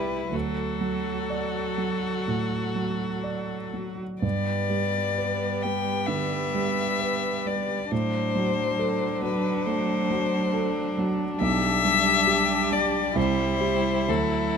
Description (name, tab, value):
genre	classical, slow romantic movement for piano quartet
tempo	60-70 BPM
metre	4/4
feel	rubato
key	G major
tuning	A4 = 445 Hz
part	rich violin	melody	0.0-14.6 s	A4 to G5	-27 LUFS	left 9 dB	none
part	clear cello	second line	0.0-14.6 s	F#3 to G3	-32 LUFS	right 10 dB	none
part	rich violin	second line	0.0-14.6 s	B3 to F#4	-31 LUFS	left 2 dB	none
part	dark grand piano	accompaniment	0.0-14.6 s	B1 to E5	-28 LUFS	right 3 dB	none
room	light reverb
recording	close, detailed microphones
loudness	-23 LUFS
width	side -6 dB against mid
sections	0.0-14.6 A section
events	none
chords	0.3 D; 4.2 G; 7.9 D7/A; 11.4 G/B; 13.2 C